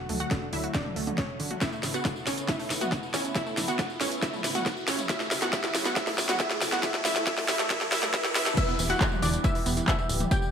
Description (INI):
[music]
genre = uplifting trance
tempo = 138 BPM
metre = 4/4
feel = straight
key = E dorian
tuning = A4 = 441 Hz
[part]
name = wide unison pluck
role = melody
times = 0.0-10.5 s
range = C#4 to G5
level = -32 LUFS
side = right 1 dB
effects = sidechain pumping, tape echo
[part]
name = lush unison pad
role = sustained chords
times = 0.0-10.5 s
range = C#3 to G4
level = -38 LUFS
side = equal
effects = chorus, phaser, sidechain pumping
[part]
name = riser and downlifter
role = sound effects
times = 0.0-10.5 s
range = none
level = -37 LUFS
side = equal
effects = none
[part]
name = wide unison pluck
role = arpeggios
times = 0.1-10.4 s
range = C#3 to B4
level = -37 LUFS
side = right 2 dB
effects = cassette tape, sidechain pumping, tape echo
[part]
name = plucky analog bass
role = bass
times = 0.1-10.2 s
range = D1 to D2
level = -35 LUFS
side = equal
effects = sidechain pumping
[part]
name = techno drum kit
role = drums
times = 0.1-10.5 s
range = crash cymbal, handclaps, hi-hat, snare drum, tambourine, toms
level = -29 LUFS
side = equal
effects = none
[part]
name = electronic kick drum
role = drums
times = 0.3-10.4 s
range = none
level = -30 LUFS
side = equal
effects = none
[part]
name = dark baby grand piano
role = second line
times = 8.6-10.5 s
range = D6 to G6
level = -34 LUFS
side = left 3 dB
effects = sidechain pumping, tape echo
[sound]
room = moderate digital room reverb, RT60 1.1 s, digital ambience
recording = high-pass filter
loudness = -25 LUFS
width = side -8 dB against mid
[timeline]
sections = 0.0-8.6 A section; 8.6-10.5 B section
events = build-up 0.0-8.6; drum fill 0.0-8.6; riser 0.0-8.6; filter sweep 0.0-8.6; drop 8.6-10.5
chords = 0.0 D; 1.6 Aadd9; 5.1 F#m7; 8.6 Em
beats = 0.31 0.75 1.18 | 1.62 2.05 2.49 2.92 | 3.35 3.79 4.22 4.66 | 5.09 5.53 5.96 6.40 | 6.83 7.27 7.70 8.14 | 8.57 9.01 9.44 9.88 | 10.31